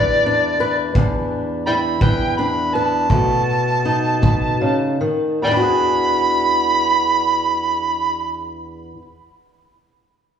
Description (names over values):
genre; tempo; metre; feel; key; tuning
acoustic country blues, solo or duo; 49-58 BPM (dotted quarters); 12/8; straight; E mixolydian; A4 = 440 Hz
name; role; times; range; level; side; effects
overdriven harmonica; melody; 0.0-8.5 s; D5 to B5; -18 LUFS; right 2 dB; slapback echo
fingerpicked swing-style acoustic guitar; accompaniment; 0.0-9.1 s; E2 to B4; -20 LUFS; left 1 dB; slapback echo
kick drum; drums; 1.0-4.4 s; none; -18 LUFS; equal; none
room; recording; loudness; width
light reverb, small room reverb; live gig heard through the venue's PA, club reverb, studio ambience; -16 LUFS; side -8 dB against mid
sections
0.0-5.4 A section; 5.4-10.3 B section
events
slowing down 0.0-5.4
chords
0.0 E5; 3.1 B7; 5.4 E9